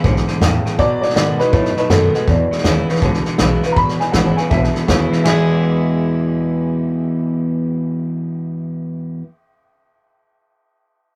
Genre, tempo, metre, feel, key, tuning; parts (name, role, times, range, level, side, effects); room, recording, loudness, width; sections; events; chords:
rockabilly; 161 BPM; 4/4; swing 64% on 8ths; E major; A4 = 440 Hz
warm upright piano; melody; 0.0-9.2 s; B3 to B5; -22 LUFS; equal
picked steel-string acoustic guitar; accompaniment; 0.0-9.2 s; E2 to F#4; -22 LUFS; equal
twangy electric guitar; riff; 0.0-9.2 s; E2 to G#4; -25 LUFS; equal
upright bass; bass; 0.0-9.2 s; E1 to B2; -24 LUFS; equal
vintage drum kit; drums; 0.0-5.4 s; hi-hat, kick drum, ride cymbal, snare drum; -22 LUFS; equal
moderate booth ambience, RT60 0.2 s; rough rehearsal-room recording; -17 LUFS; mono
0.0-3.8 A section; 3.8-5.3 B section; 5.3-8.2 C section
0.0 E; 0.8 B7; 2.3 E